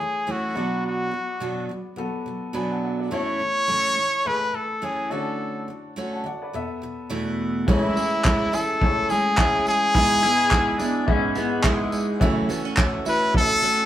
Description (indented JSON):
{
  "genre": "acoustic pop",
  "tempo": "106 BPM",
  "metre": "4/4",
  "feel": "swing 55% on 16ths",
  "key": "A major",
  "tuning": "A4 = 438 Hz",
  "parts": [
    { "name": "brilliant trumpet", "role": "melody", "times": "0.0-13.9 s", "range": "E4 to C#5", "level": "-22 LUFS", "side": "left 1 dB", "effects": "none" },
    { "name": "clear upright piano", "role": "accompaniment", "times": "0.0-13.9 s", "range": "G#2 to B5", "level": "-31 LUFS", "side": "left 3 dB", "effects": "none" },
    { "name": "picked steel-string acoustic guitar", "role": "accompaniment", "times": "0.0-13.9 s", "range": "E2 to G#4", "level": "-27 LUFS", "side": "right 2 dB", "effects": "none" },
    { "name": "open-back banjo", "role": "arpeggios", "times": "7.7-13.9 s", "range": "E3 to E4", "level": "-32 LUFS", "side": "right 3 dB", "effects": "none" },
    { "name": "cloth-damped thuddy drum kit", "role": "drums", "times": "7.7-13.8 s", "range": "handclaps, kick drum, tambourine", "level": "-23 LUFS", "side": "equal", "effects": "none" },
    { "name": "pedal steel guitar", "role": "second line", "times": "10.2-12.1 s", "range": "G#3 to E4", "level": "-27 LUFS", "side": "left 3 dB", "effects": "none" }
  ],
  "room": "wet studio reverb, RT60 0.8 s",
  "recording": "band playing live in one room",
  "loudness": "-20 LUFS",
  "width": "side -12 dB against mid",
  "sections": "0.0-7.7 A section; 7.7-13.9 B section",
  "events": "none",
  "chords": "0.0 A; 0.6 Bm; 3.1 A; 5.1 Dmaj7; 6.5 Esus4; 7.7 Amaj7; 9.9 E/G#; 12.2 F#m7"
}